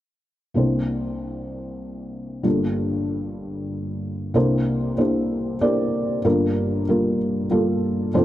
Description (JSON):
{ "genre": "folk", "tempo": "95 BPM", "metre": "3/4", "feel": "straight", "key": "unclear", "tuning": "A4 = 440 Hz", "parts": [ { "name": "felt-muted upright piano", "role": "melody", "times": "0.5-8.2 s", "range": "F1 to D5", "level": "-20 LUFS", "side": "equal", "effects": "none" } ], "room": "moderate plate reverb, RT60 2.9 s", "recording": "dry, close 1970s-style studio recording", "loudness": "-20 LUFS", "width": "side -13 dB against mid", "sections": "0.6-4.3 A section; 4.3-8.2 B section", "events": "none", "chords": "0.6 C9; 2.5 Gm9; 4.3 C9; 6.2 Gm9" }